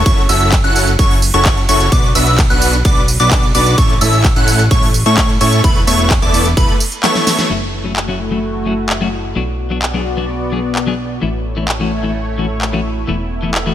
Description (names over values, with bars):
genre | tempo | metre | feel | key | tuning
EDM, festival progressive house | 129 BPM | 4/4 | straight | F# minor | A4 = 440 Hz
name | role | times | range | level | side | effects
plucky unison lead | arpeggios | 0.0-7.5 s | B5 to F#6 | -18 LUFS | equal | cassette tape, sidechain pumping, digital delay
big supersaw lead | riff | 0.0-7.5 s | A3 to F#5 | -17 LUFS | equal | sidechain pumping, low-pass filter, digital delay
fat analog bass | bass | 0.0-13.7 s | E1 to A2 | -18 LUFS | equal | sidechain pumping
big-room dance drum kit | drums | 0.1-13.6 s | handclaps, hi-hat, ride cymbal, snare drum, tambourine | -19 LUFS | right 1 dB | none
electronic kick drum | drums | 0.1-6.7 s | none | -14 LUFS | equal | none
clean electric guitar | accompaniment | 7.5-13.7 s | E3 to G#4 | -21 LUFS | left 4 dB | tremolo, sidechain pumping, digital delay
lush unison pad | sustained chords | 7.5-13.7 s | A3 to D5 | -22 LUFS | left 1 dB | chorus, phaser, sidechain pumping
room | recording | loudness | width
light reverb | none | -11 LUFS | side -11 dB against mid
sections
0.0-7.5 A section; 7.5-13.7 B section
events
drop 0.0-7.5; drum fill 7.0-7.5; band accent 7.4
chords
0.1 F#m7; 1.9 Bm; 3.8 A; 5.6 Esus4; 7.5 F#m7; 9.4 Bm; 11.2 A; 13.1 Esus4